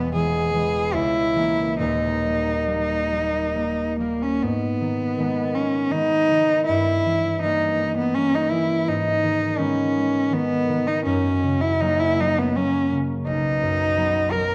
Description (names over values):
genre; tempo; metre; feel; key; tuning
classical, romantic duo for cello and harp; 67-86 BPM; 3/4; rubato; G# minor; A4 = 440 Hz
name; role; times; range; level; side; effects
rich cello; melody; 0.0-14.5 s; A#3 to A#4; -24 LUFS; equal; none
concert harp; accompaniment; 0.0-14.5 s; D#1 to Db4; -27 LUFS; equal; none
room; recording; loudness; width
moderate recital hall reverb, RT60 1.4 s; worn, warbling old tape, cassette tape, warbly pitch drift, nothing above 10.6 kHz; -22 LUFS; mono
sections
0.0-4.4 A section; 4.4-14.5 B section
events
none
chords
0.0 E; 0.9 A#dim/C#; 1.8 D#; 4.4 G#m; 6.7 Gdim7; 8.9 G#m; 11.0 F#; 13.3 B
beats
0.15 0.94 | 1.81 2.68 3.56 | 4.42 5.18 5.93 | 6.67 7.43 8.15 | 8.87 9.59 10.32 | 11.05 11.81 12.55 | 13.27 13.97